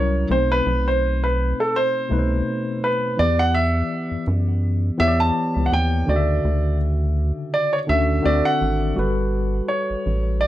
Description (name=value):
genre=R&B, neo-soul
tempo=83 BPM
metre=4/4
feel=swing 55% on 16ths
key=D major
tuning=A4 = 445 Hz
part: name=warm baby grand piano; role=melody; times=0.0-10.5 s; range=A4 to A5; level=-22 LUFS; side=right 1 dB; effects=none
part: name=tine electric piano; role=accompaniment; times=0.0-10.5 s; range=B2 to E5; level=-24 LUFS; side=left 2 dB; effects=medium stereo tremolo, plate reverb
part: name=rubbery square bass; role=bass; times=0.0-10.5 s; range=G1 to F#2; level=-21 LUFS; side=equal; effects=none
room=light reverb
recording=none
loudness=-18 LUFS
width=side -14 dB against mid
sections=0.0-9.0 A section; 9.0-10.5 B section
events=grand piano solo 0.0-9.0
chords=0.3 B7b9; 3.2 Em7; 6.1 Dmaj9; 8.2 D9; 9.0 Gmaj9